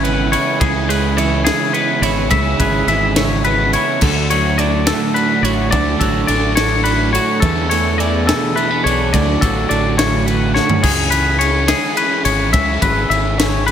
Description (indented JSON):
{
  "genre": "math rock and midwest emo",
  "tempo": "70 BPM (dotted quarters)",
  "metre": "6/8",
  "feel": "straight",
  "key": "unclear",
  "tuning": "A4 = 439 Hz",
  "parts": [
    { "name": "twelve-string electric guitar", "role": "accompaniment", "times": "0.0-10.8 s", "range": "D2 to F#4", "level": "-20 LUFS", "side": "right 7 dB", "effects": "spring reverb, slapback echo" },
    { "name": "twangy electric guitar", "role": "arpeggios", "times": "0.0-13.7 s", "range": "G#4 to E5", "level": "-18 LUFS", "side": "left 5 dB", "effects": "none" },
    { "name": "crunchy overdriven guitar", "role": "riff", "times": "0.0-13.7 s", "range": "C#3 to G#4", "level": "-22 LUFS", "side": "right 2 dB", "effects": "slapback echo" },
    { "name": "growling fingered electric bass", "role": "bass", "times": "0.0-13.7 s", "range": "G#1 to E2", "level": "-20 LUFS", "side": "equal", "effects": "overdrive" },
    { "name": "crisp fusion drum kit", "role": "drums", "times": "0.0-13.7 s", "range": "crash cymbal, kick drum, ride cymbal, snare drum, toms", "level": "-20 LUFS", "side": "equal", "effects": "none" }
  ],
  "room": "moderate lush hall reverb, RT60 2.5 s",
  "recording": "big arena sound",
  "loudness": "-13 LUFS",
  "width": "side -9 dB against mid",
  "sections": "0.0-10.8 A section; 10.8-13.7 B section",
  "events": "drum fill 10.5",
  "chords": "0.0 C#m7; 4.0 Dmaj7; 7.4 E7sus4; 9.1 Dmaj7; 10.8 C#m7"
}